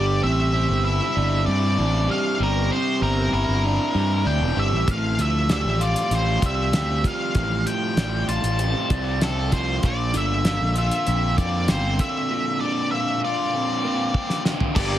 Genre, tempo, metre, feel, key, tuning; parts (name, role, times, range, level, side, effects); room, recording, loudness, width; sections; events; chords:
indie rock; 97 BPM; 4/4; straight; A4 = 440 Hz
octave-fuzz lead guitar; melody; 0.0-15.0 s; A4 to A5; -26 LUFS; equal; distortion
overdriven electric guitar; riff; 0.0-15.0 s; G2 to G4; -24 LUFS; equal
fuzz fingered electric bass; bass; 0.0-15.0 s; E1 to G2; -23 LUFS; equal; overdrive
cloth-damped thuddy drum kit; drums; 4.9-14.9 s; crash cymbal, hi-hat, kick drum, snare drum, toms; -24 LUFS; equal
lush unison pad; sustained chords; 14.9-15.0 s; G4 to Bb5; -32 LUFS; equal; chorus
little or no reverb; heavily compressed radio sound; -20 LUFS; side -12 dB against mid
0.0-14.8 A section
drum fill 14.1-14.8
0.0 Cadd9/G; 4.9 Fadd9/A; 9.8 Bbadd9